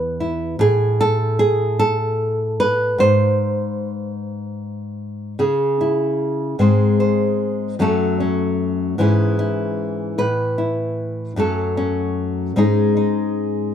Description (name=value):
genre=folk, solo fingerstyle acoustic guitar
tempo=50 BPM (dotted quarters)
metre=6/8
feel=straight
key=C# minor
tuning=A4 = 439 Hz
part: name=nylon-string guitar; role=solo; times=0.0-13.7 s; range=E2 to B#4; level=-17 LUFS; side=equal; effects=none
room=light reverb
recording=dry, close 1970s-style studio recording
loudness=-17 LUFS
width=side -9 dB against mid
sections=0.0-5.4 A section; 5.4-13.7 B section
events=none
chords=0.0 N.C.; 5.4 C#m; 6.6 G#; 7.8 F#m; 9.0 C#m/G#; 10.2 Asus2; 11.4 F#m; 12.6 G#sus4